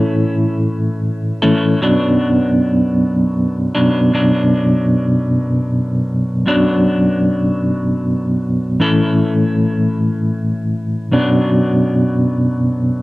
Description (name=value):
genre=rock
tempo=52 BPM (dotted quarters)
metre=6/8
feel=straight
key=B minor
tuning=A4 = 441 Hz
part: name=clean electric guitar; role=solo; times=0.0-13.0 s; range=B1 to A4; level=-13 LUFS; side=equal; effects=harmonic tremolo
room=light reverb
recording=none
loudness=-13 LUFS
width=side -19 dB against mid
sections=0.0-4.1 A section; 4.1-8.8 B section; 8.8-13.0 C section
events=none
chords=0.0 A; 1.8 Bm; 8.8 A; 11.1 Bm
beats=0.66 | 1.82 2.98 | 4.14 5.31 | 6.47 7.63 | 8.80 9.96 | 11.12 12.28